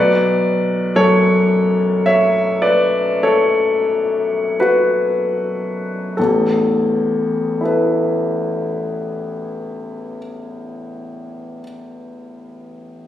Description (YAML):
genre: classical, impressionist solo piano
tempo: 35-62 BPM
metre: 5/4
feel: rubato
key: A major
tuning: A4 = 440 Hz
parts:
  - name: clear grand piano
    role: solo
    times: 0.0-13.1 s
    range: A1 to E5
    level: -16 LUFS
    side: left 1 dB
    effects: none
room: moderate concert hall reverb, RT60 1.8 s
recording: recorded on a phone in the room, studio reverb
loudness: -14 LUFS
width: side -11 dB against mid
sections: 0.0-6.2 A section; 6.2-13.1 B section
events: slowing down 0.0-6.2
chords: 0.0 Bm9; 6.2 Asus2